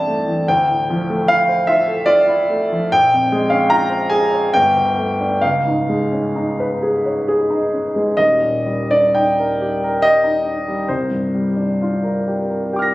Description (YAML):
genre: classical, impressionist solo piano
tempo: 58-78 BPM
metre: 3/4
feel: rubato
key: unclear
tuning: A4 = 440 Hz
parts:
  - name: warm grand piano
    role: solo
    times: 0.0-12.9 s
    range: Eb1 to Bb6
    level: -15 LUFS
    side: equal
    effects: none
room: moderate recital hall reverb, RT60 1.3 s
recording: recorded on a phone in the room, studio reverb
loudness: -15 LUFS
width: side -17 dB against mid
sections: 0.0-12.9 A section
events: none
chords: 0.4 Dm9; 2.9 Bbm9; 4.5 Gsus2; 5.4 Db9; 8.2 Ebmaj7; 10.9 C9sus4